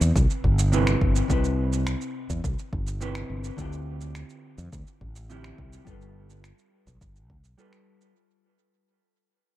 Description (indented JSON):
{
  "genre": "sunset chillout",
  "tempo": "105 BPM",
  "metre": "4/4",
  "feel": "straight",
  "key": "C major",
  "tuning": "A4 = 439 Hz",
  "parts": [
    { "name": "vintage hollow-body jazz guitar", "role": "accompaniment", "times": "0.0-8.1 s", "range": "C3 to B4", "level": "-30 LUFS", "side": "moving between left 3 dB and right 5 dB", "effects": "auto-pan, low-pass filter, tape echo" },
    { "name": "fretless electric bass", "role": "bass", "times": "0.0-7.5 s", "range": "G1 to F2", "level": "-26 LUFS", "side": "equal", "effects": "none" },
    { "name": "electronic shaker and finger snaps", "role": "drums", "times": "0.0-8.1 s", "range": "none", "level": "-34 LUFS", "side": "right 3 dB", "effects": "overdrive, tape echo" },
    { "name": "electronic kick drum", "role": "drums", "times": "0.2-7.4 s", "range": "none", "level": "-26 LUFS", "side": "equal", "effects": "none" }
  ],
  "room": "digital ambience",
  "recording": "echo-heavy mix",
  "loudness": "-23 LUFS",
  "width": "side -14 dB against mid",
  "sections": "0.0-8.2 A section",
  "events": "fade-out 0.0-8.2",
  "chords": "0.0 Cmaj7; 3.6 Dm11; 5.9 G9",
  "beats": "0.16 0.73 | 1.30 1.87 2.44 3.01 | 3.58 4.16 4.73 5.30 | 5.87 6.44 7.01 7.58"
}